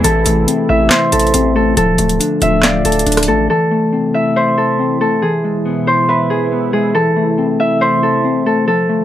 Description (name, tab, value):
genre	hip hop, trap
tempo	139 BPM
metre	4/4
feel	half-time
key	A harmonic minor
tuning	A4 = 440 Hz
part	Celtic harp	melody	0.0-9.0 s	G#4 to E5	-15 LUFS	equal	low-pass filter, digital delay
part	mellow electric guitar	accompaniment	0.0-9.0 s	E3 to F5	-17 LUFS	left 3 dB	low-pass filter
part	sweeping resonant pad	sustained chords	0.0-9.0 s	B2 to F4	-21 LUFS	right 2 dB	chorus
part	distorted 808-style bass	bass	0.0-3.5 s	D1 to A1	-18 LUFS	right 1 dB	distortion
part	booming analog drum machine	drums	0.0-3.3 s	handclaps, hi-hat, rim click, snare drum	-16 LUFS	equal	none
room	moderate booth ambience, RT60 0.2 s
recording	none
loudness	-11 LUFS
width	side -11 dB against mid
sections	0.0-3.5 A section; 3.5-9.0 B section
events	none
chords	0.0 Am; 1.8 Dm; 3.5 Am; 5.2 E; 7.0 Am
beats	| 0.04 0.47 0.91 1.34 | 1.77 2.20 2.63 3.06 | 3.50 3.93 4.36 4.79 | 5.22 5.66 6.09 6.52 | 6.95 7.38 7.81 8.24 | 8.68